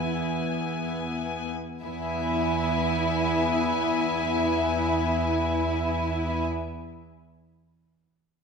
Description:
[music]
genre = classical, slow romantic movement for string orchestra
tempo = free time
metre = none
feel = none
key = E major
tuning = A4 = 440 Hz
[part]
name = warm studio violin section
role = melody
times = 0.0-6.4 s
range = G#5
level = -33 LUFS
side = left 8 dB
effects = none
[part]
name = warm chamber violin section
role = second line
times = 0.0-6.4 s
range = E5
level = -32 LUFS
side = left 6 dB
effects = none
[part]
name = warm studio viola section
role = accompaniment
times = 0.0-6.4 s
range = B3 to E4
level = -31 LUFS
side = left 4 dB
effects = none
[part]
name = warm chamber double bass section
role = bass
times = 0.0-6.4 s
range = E2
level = -31 LUFS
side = right 5 dB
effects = none
[part]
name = warm studio cello section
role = bass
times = 0.0-6.4 s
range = E4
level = -28 LUFS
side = right 3 dB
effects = none
[sound]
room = wet scoring stage reverb, RT60 1.6 s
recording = minimal, uncompressed stereo recording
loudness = -24 LUFS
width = side -5 dB against mid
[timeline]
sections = 0.0-1.8 A section; 1.8-8.4 B section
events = slowing down 0.0-1.8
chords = 0.0 E

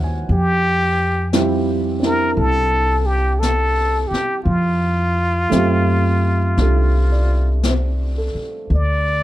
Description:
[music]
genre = jazz ballad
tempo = 57 BPM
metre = 4/4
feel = swing 66% on 8ths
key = F major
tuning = A4 = 440 Hz
[part]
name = warm grand piano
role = accompaniment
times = 0.0-9.2 s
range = G3 to Ab5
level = -23 LUFS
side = right 3 dB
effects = none
[part]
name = upright bass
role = bass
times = 0.0-9.2 s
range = C2 to Gb2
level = -18 LUFS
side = equal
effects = none
[part]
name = trumpet with plunger mute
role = melody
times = 0.3-9.2 s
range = F4 to D5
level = -20 LUFS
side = left 1 dB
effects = none
[part]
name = jazz brush drum kit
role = drums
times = 0.3-9.2 s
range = brushed snare drum, hi-hat, snare drum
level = -28 LUFS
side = left 4 dB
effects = none
[sound]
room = little or no reverb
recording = dark, warm production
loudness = -15 LUFS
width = side -14 dB against mid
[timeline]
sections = 0.0-8.7 A section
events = none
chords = 0.3 Fmaj9; 8.7 D5

